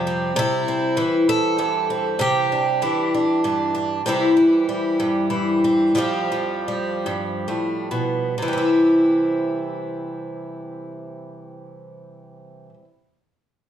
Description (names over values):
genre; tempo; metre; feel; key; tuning
folk, solo fingerstyle acoustic guitar; 41-66 BPM (dotted quarters); 6/8; straight; C major; A4 = 440 Hz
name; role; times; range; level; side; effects
picked twelve-string acoustic guitar; solo; 0.0-12.9 s; F2 to A4; -19 LUFS; equal; none
room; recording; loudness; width
wet large studio reverb, RT60 0.9 s; heard from further back in the room; -18 LUFS; side -10 dB against mid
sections
0.0-4.0 A section; 4.0-8.4 B section; 8.4-13.7 C section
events
slowing down 4.0-8.4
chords
0.4 C; 2.2 Cadd9; 4.0 C; 6.0 Fadd9; 8.4 C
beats
| 0.35 1.26 | 2.18 3.11 | 4.04 4.97 | 5.96 7.07 | 8.37 9.81 | 11.24 12.67